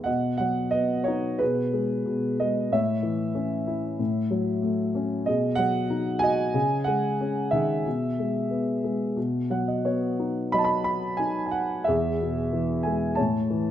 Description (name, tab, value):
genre	classical, lyrical solo piano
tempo	92 BPM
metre	4/4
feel	rubato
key	unclear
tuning	A4 = 440 Hz
part	dark concert grand piano	solo	0.0-13.7 s	E2 to B5	-23 LUFS	equal	none
room	light reverb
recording	close, detailed microphones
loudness	-23 LUFS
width	side -11 dB against mid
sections	0.1-13.7 A section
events	grand piano fill 9.2-10.5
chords	0.1 B; 1.4 B6; 2.7 A; 4.0 F#m/A; 5.3 B6; 6.6 C#sus2; 7.9 E/B; 9.2 B; 11.9 E; 13.2 A